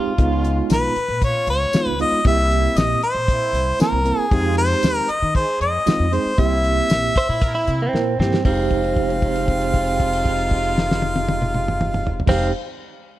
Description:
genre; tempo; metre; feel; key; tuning
straight-eighth soul blues; 116 BPM; 4/4; straight; F minor; A4 = 440 Hz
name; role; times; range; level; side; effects
direct-recorded clean electric guitar; second line; 0.0-0.6, 7.2-12.5 s; C4 to C5; -25 LUFS; right 3 dB; none
tine electric piano; accompaniment; 0.0-12.5 s; Ab3 to Bb4; -24 LUFS; right 4 dB; medium stereo tremolo
upright bass; bass; 0.1-12.5 s; F1 to Eb3; -24 LUFS; equal; none
bright horn section; sustained chords; 0.2-12.5 s; Ab3 to Ab4; -32 LUFS; equal; none
damped 70s drum kit; drums; 0.2-12.4 s; crash cymbal, hi-hat, kick drum, snare drum, tambourine, toms; -21 LUFS; left 1 dB; none
clear harmonica; melody; 0.7-12.5 s; Ab4 to F5; -21 LUFS; equal; slapback echo
room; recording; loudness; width
light reverb, small room ambience; none; -17 LUFS; side -14 dB against mid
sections
0.0-8.5 A section; 8.5-12.6 B section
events
drum fill 7.9-8.5; held note 8.5-12.3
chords
0.2 Db7; 2.3 C7; 4.3 Fm7; 6.4 C7; 8.5 Fm7

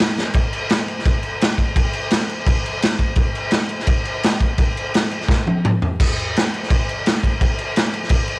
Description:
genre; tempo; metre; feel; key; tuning
rock; 170 BPM; 4/4; straight; none; none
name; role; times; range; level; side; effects
raw garage drum kit; drums; 0.0-8.4 s; crash cymbal, kick drum, snare drum, toms; -16 LUFS; equal; cassette tape
room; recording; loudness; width
little or no reverb; home recording on cassette; -16 LUFS; side -26 dB against mid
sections
0.0-6.0 A section; 6.0-8.4 B section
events
drum fill 0.2, 5.3-6.0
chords
none

